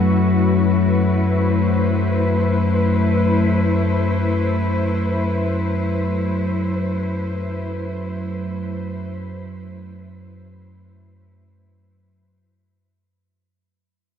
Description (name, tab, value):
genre	dark ambient drone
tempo	free time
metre	none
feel	none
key	unclear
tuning	A4 = 440 Hz
part	muted symphonic cello section	sustained chords	0.0-13.1 s	A3 to C5	-22 LUFS	left 2 dB	shimmer reverb
part	deep rumbling drone	drone	0.0-13.2 s	F#2 to F#3	-20 LUFS	left 1 dB	built-in reverb
room	wet huge ambient reverb, RT60 8.0 s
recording	none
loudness	-17 LUFS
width	side -8 dB against mid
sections	0.0-13.1 A section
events	fade-out on cello section 0.0-13.1; fade-out 3.4-13.1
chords	0.0 Am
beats	free time